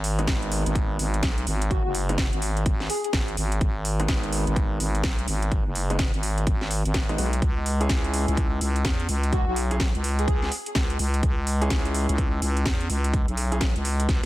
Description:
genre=bass house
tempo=126 BPM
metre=4/4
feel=swing 62% on 16ths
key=G# minor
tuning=A4 = 440 Hz
part: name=growling FM bass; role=bass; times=0.0-14.3 s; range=F#1 to E2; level=-25 LUFS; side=equal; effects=overdrive, sidechain pumping
part: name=house drum kit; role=drums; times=0.0-14.2 s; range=hi-hat, snare drum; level=-30 LUFS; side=equal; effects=none
part: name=warm concert grand piano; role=stabs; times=0.2-13.6 s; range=G#3 to G#4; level=-32 LUFS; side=right 1 dB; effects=sidechain pumping, digital delay
part: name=electronic kick drum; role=drums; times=0.3-14.2 s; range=none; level=-25 LUFS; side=equal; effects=none
part: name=airy dreamy lead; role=melody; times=1.7-3.1, 9.3-10.5 s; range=F#4 to G#4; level=-32 LUFS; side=left 1 dB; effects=chorus, digital delay
room=digital ambience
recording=dense, heavily limited modern master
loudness=-22 LUFS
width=side -16 dB against mid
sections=0.0-14.3 A section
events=drum fill 14.1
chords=0.0 G#m; 7.4 C#m

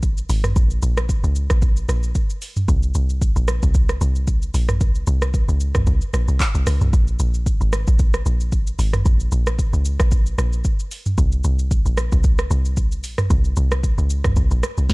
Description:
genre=amapiano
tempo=113 BPM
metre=4/4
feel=swing 55% on 16ths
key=Bb minor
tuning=A4 = 440 Hz
part: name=deep log drum bass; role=bass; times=0.0-14.9 s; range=Ab1 to Db2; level=-19 LUFS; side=equal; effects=none
part: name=afro-pop drum kit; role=drums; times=0.0-14.9 s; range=handclaps, hi-hat, kick drum, rim click, shaker, snare drum, toms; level=-19 LUFS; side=equal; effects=none
room=little or no reverb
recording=dark, warm production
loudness=-17 LUFS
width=side -26 dB against mid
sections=0.0-14.9 A section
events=none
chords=none

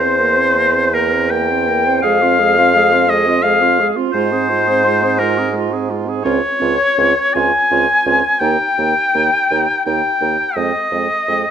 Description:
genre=classical, slow romantic movement for wind quintet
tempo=84 BPM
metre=3/4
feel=rubato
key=F minor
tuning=A4 = 442 Hz
part: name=mellow hollow silver concert flute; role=melody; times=0.0-11.5 s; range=Bb4 to Ab5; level=-20 LUFS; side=left 6 dB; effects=none
part: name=clear oboe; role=second line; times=0.0-11.5 s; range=Bb4 to Ab5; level=-15 LUFS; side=left 1 dB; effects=none
part: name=dark French horn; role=accompaniment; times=0.0-11.4 s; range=Ab3 to C4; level=-23 LUFS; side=right 5 dB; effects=none
part: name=mellow clarinet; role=accompaniment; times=0.0-11.4 s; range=C4 to C5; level=-23 LUFS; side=right 12 dB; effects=none
part: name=warm bassoon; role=bass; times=0.0-11.4 s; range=Db2 to Ab2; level=-20 LUFS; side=right 2 dB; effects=none
room=moderate recital hall reverb, RT60 1.2 s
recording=none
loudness=-12 LUFS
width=side -8 dB against mid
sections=0.0-11.5 A section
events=none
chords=0.0 C7/E; 2.0 Fm; 4.1 Fm/Ab; 6.3 Dbmaj7; 8.4 Eb; 10.6 Fm7

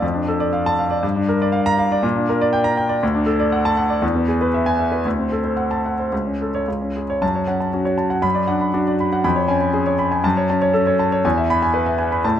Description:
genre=classical, virtuoso piano study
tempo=119 BPM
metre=2/4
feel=rubato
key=F# minor from 3.0 s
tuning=A4 = 443 Hz
part: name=clear grand piano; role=solo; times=0.0-12.4 s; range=C#2 to B5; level=-17 LUFS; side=equal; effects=none
room=light reverb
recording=close, detailed microphones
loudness=-17 LUFS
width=side -10 dB against mid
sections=0.0-7.2 A section; 7.2-12.4 B section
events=none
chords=0.0 Dm/F; 1.0 Gm7; 2.0 Gm/Bb; 3.0 D; 4.0 E; 5.0 D7; 6.1 A/C#; 6.7 C#5; 7.2 F#m; 8.2 Bm/F#; 9.2 C#7/E#; 10.2 F#m; 11.2 E

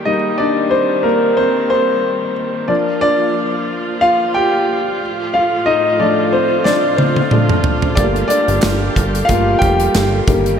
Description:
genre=piano-driven pop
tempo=91 BPM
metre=4/4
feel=swing 56% on 16ths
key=G minor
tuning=A4 = 440 Hz
part: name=clear concert grand piano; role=accompaniment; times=0.0-10.6 s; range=Eb3 to G5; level=-14 LUFS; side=left 1 dB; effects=slapback echo
part: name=rich studio string section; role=sustained chords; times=0.0-10.6 s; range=A2 to A4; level=-22 LUFS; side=right 2 dB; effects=none
part: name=modern studio drum kit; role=drums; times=6.7-10.6 s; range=hi-hat, kick drum, snare drum, toms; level=-17 LUFS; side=right 1 dB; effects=none
part: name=plucky analog bass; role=bass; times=8.0-10.6 s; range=F1 to G1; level=-18 LUFS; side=right 1 dB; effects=none
part: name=group handclap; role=percussion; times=8.6-10.1 s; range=none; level=-31 LUFS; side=right 8 dB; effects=none
room=moderate lush hall reverb, RT60 2.7 s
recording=big arena sound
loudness=-13 LUFS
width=side -7 dB against mid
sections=0.0-10.6 A section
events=grand piano solo 0.0-10.6; drum fill 6.7-8.0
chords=0.0 Eb; 2.7 Bb; 5.0 Dm/A; 8.0 Gmadd9

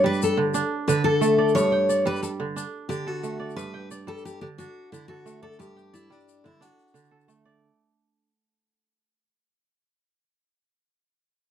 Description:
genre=west african traditional, West African string and xylophone music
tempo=119 BPM (dotted quarters)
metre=12/8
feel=straight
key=unclear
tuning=A4 = 439 Hz
part: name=picked steel-string acoustic guitar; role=melody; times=0.0-7.3 s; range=D4 to C#5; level=-24 LUFS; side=left 3 dB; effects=none
part: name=kora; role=arpeggios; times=0.0-9.3 s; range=G2 to G5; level=-26 LUFS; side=right 4 dB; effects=none
part: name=tube shaker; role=percussion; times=0.1-7.4 s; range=none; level=-38 LUFS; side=left 9 dB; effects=none
room=light reverb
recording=dark, warm production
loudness=-21 LUFS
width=side -9 dB against mid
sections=0.0-7.6 A section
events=fade-out 0.0-7.6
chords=0.0 G5; 0.5 D5; 1.6 G5; 2.6 D; 3.6 G; 4.6 D; 5.6 G5; 6.6 D

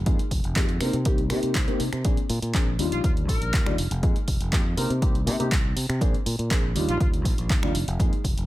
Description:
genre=filtered disco house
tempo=121 BPM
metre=4/4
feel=straight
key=F dorian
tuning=A4 = 436 Hz
part: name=fingered electric bass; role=bass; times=0.0-8.5 s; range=F1 to C3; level=-27 LUFS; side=equal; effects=sidechain pumping
part: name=dark baby grand piano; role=accompaniment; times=0.1-8.1 s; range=G3 to Bb4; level=-30 LUFS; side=left 1 dB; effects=phaser, vintage 12-bit sampler grit, sidechain pumping
part: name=electronic kick drum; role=drums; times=0.1-8.3 s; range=none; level=-24 LUFS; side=equal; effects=none
part: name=punchy analog drum machine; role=drums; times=0.1-8.5 s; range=finger snaps, handclaps, hi-hat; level=-31 LUFS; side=equal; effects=overdrive, sidechain pumping on hats
part: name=clear horn section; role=melody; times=2.9-3.7, 6.9-7.1 s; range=F4 to Bb4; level=-34 LUFS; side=left 1 dB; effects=sidechain pumping, dub echo
room=digital ambience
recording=none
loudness=-22 LUFS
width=side -16 dB against mid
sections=0.0-8.5 A section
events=none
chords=0.0 Fm11; 0.8 Cm7; 2.0 Bb9; 2.8 Ebmaj9; 3.8 Fm11; 4.8 Cm7; 6.0 Bb9; 6.8 Ebmaj9; 7.8 Fm11

